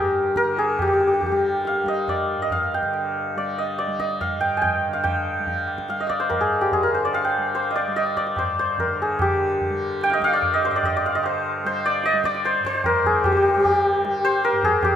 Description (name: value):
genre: indian classical, Hindustani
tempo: 138-152 BPM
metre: 5/4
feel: straight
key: G raga bhairavi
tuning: A4 = 439 Hz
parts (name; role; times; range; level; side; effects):
- santur; melody; 0.0-15.0 s; G4 to Ab5; -20 LUFS; left 1 dB; none
- tanpura; drone; 0.0-15.0 s; G2 to G3; -34 LUFS; right 1 dB; none
- tabla; percussion; 0.4-15.0 s; none; -31 LUFS; right 2 dB; none
room: moderate lush hall reverb, RT60 2.7 s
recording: rough home demo mix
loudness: -19 LUFS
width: side -9 dB against mid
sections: 0.8-9.2 A section; 9.2-15.0 B section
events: speeding up 0.0-15.0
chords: none